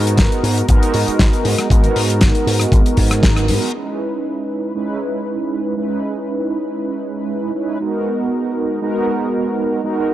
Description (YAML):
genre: nu-disco, nu disco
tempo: 118 BPM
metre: 4/4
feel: straight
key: C# dorian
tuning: A4 = 440 Hz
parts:
  - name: mellow synth brass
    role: accompaniment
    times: 0.0-10.1 s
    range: G#3 to B4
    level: -18 LUFS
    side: right 2 dB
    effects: chorus, tape echo
  - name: slap bass with an envelope filter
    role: bass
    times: 0.0-3.6 s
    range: G#1 to G#2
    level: -18 LUFS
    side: equal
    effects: tube saturation
  - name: damped 70s drum kit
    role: drums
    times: 0.1-3.7 s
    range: hi-hat, rim click, snare drum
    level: -19 LUFS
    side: left 1 dB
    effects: low-pass filter on hats, small room ambience, low-pass filter on snare, low-pass filter on room
  - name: electronic kick drum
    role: drums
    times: 0.2-3.3 s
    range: none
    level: -14 LUFS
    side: equal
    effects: small room ambience
room: small room ambience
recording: dry, gritty hardware recording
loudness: -15 LUFS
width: side -13 dB against mid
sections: 0.0-3.7 A section; 3.7-10.1 B section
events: band accent 3.2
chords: 0.0 G#m7; 3.7 C#m7; 7.8 G#m7